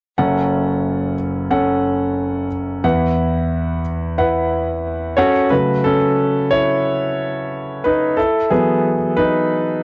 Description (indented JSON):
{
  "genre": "pop",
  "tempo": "90 BPM",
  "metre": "4/4",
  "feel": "straight",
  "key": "unclear",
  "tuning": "A4 = 440 Hz",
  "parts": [
    { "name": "clear concert grand piano", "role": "accompaniment", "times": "0.2-9.8 s", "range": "F#1 to F#5", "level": "-18 LUFS", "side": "equal", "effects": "cassette tape" }
  ],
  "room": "light reverb",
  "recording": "home recording on cassette",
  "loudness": "-18 LUFS",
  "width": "mono",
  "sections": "0.2-5.5 A section; 5.5-9.8 B section",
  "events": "grand piano solo 5.5-9.8",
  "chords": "0.2 F#m; 2.8 Esus2; 5.2 F#m; 8.2 Esus2"
}